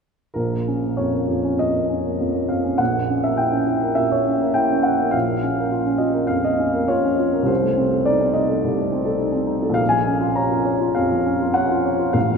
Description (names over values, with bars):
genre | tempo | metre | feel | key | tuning
classical, romantic character piece for solo piano | 102 BPM | 4/4 | rubato | Bb minor | A4 = 440 Hz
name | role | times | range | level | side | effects
clear upright piano | solo | 0.3-12.4 s | A1 to Bb5 | -18 LUFS | equal | none
room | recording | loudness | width
wet cathedral reverb, RT60 5.7 s | recorded in a church or concert hall | -18 LUFS | side -5 dB against mid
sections
0.4-12.4 A section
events
none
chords
0.4 Bbm; 2.8 Bbdim7; 5.1 Bbm; 7.5 Adim/C; 9.8 Bbm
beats
| 0.37 0.99 1.59 2.19 | 2.79 3.40 3.99 4.57 | 5.14 5.73 6.31 6.91 | 7.50 8.07 8.63 9.20 | 9.80 10.39 10.97 11.57 | 12.15